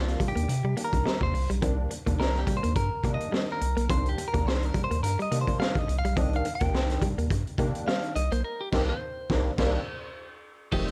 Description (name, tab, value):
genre	funk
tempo	106 BPM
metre	4/4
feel	swing 56% on 16ths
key	C minor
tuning	A4 = 440 Hz
part	clean electric guitar	accompaniment	0.0-10.9 s	A3 to G5	-35 LUFS	equal	plate reverb
part	barky tine electric piano	stabs	0.0-10.9 s	D3 to D4	-37 LUFS	equal	overdrive, ensemble chorus, plate reverb
part	round analog bass	bass	0.0-10.9 s	F1 to C3	-30 LUFS	equal	none
part	raw garage drum kit	drums	0.1-10.9 s	crash cymbal, hi-hat, kick drum, snare drum	-32 LUFS	equal	none
part	direct-recorded clean electric guitar	riff	0.2-10.8 s	F3 to C4	-37 LUFS	equal	spring reverb
room	light reverb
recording	dark, warm production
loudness	-27 LUFS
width	mono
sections	0.0-10.7 A section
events	clean electric guitar solo 0.0-10.7; band accent 8.4-10.7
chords	0.0 Cm9